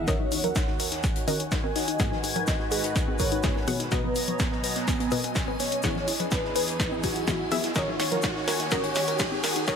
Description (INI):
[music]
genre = progressive house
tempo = 125 BPM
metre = 4/4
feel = straight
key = Eb phrygian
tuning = A4 = 440 Hz
[part]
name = filtered supersaw swell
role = sustained chords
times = 0.0-9.8 s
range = Eb2 to A#5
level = -35 LUFS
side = right 1 dB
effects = sidechain pumping
[part]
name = swell and riser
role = sound effects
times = 0.0-9.8 s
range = none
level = -37 LUFS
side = right 1 dB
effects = none
[part]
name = backwards swelling texture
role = texture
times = 0.0-9.8 s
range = Ab5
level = -38 LUFS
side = left 2 dB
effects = built-in reverb, sidechain pumping
[part]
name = wide unison lead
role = melody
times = 0.1-9.8 s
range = Gb4 to Eb5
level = -33 LUFS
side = equal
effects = digital delay
[part]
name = glassy wavetable pluck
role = arpeggios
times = 0.1-9.7 s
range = B3 to Db5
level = -32 LUFS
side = equal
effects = chorus, sidechain pumping, digital delay
[part]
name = wide unison pluck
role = stabs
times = 0.1-9.8 s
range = Ab2 to A#5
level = -33 LUFS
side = left 3 dB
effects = sidechain pumping, digital delay
[part]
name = electronic kick drum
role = drums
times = 0.1-9.8 s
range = none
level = -29 LUFS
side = equal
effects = none
[part]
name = house drum kit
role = drums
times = 0.1-9.8 s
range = hi-hat, snare drum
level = -31 LUFS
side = left 1 dB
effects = high-pass filter on snare, low-pass filter on snare, high-pass filter on hats, low-pass filter on hats
[part]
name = loose indie drum kit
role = drums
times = 0.1-9.8 s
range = hi-hat, shaker, snare drum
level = -38 LUFS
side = left 3 dB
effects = high-pass filter on hats, high-pass filter on snare, high-pass filter on perc, high-pass filter on room
[part]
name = congas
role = percussion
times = 0.2-9.4 s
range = none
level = -36 LUFS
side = left 5 dB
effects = overdrive, sidechain pumping on perc
[sound]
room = light reverb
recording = high-pass filter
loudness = -24 LUFS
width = side -7 dB against mid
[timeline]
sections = 0.1-9.8 A section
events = build-up 0.1-9.8; drum fill 0.1-9.8; filter sweep on synth arpeggio sound 0.1-9.8; filter sweep on synth pluck 0.1-9.8; riser 2.8-9.8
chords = 0.1 Ebm7; 2.0 Abm7; 3.9 Bmaj7; 5.8 Emaj7; 7.8 Ebm7